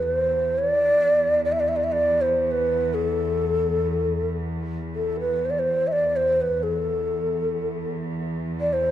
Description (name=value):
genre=Persian modal ensemble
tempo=free time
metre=none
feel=none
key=E dastgah shur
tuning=A4 = 440 Hz
part: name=breathy mellow ney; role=melody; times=0.0-8.9 s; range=A4 to E5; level=-21 LUFS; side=equal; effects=none
part: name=rich chamber cello section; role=drone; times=0.0-8.9 s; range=E2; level=-29 LUFS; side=right 1 dB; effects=none
room=moderate recital hall reverb, RT60 1.4 s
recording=close, detailed microphones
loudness=-21 LUFS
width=side -11 dB against mid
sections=0.0-8.9 A section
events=none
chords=none